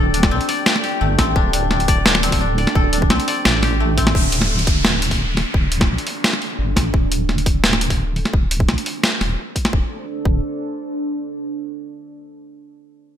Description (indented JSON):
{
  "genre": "half-time drum and bass",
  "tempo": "172 BPM",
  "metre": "4/4",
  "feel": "half-time",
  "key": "unclear",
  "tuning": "A4 = 438 Hz",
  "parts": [
    { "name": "deep dark ambient pad", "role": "sustained chords", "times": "0.0-11.1 s", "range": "D4 to G5", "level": "-26 LUFS", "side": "right 1 dB", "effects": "chorus, built-in reverb, sidechain pumping" },
    { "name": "koto", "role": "arpeggios", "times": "0.0-6.7 s", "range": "D3 to D5", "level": "-23 LUFS", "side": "left 3 dB", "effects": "digital delay" },
    { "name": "deep soft wobble bass", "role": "bass", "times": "0.0-10.4 s", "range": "D1 to C2", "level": "-20 LUFS", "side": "equal", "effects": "chorus" },
    { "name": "boom bap sampler-style drum kit", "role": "drums", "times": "0.1-9.7 s", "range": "hi-hat, snare drum", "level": "-20 LUFS", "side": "equal", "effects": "gated reverb" },
    { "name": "electronic kick drum", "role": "drums", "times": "0.2-10.3 s", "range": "none", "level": "-19 LUFS", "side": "equal", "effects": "none" },
    { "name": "downlifter", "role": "sound effects", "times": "4.1-6.9 s", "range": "none", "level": "-25 LUFS", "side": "equal", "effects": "none" }
  ],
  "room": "light reverb, digital ambience",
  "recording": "bright 1980s-style digital production",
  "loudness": "-16 LUFS",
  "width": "side -10 dB against mid",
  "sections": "0.0-4.1 A section; 4.1-9.7 B section; 9.7-11.1 C section",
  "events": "drop 0.0-4.1",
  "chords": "0.0 D5"
}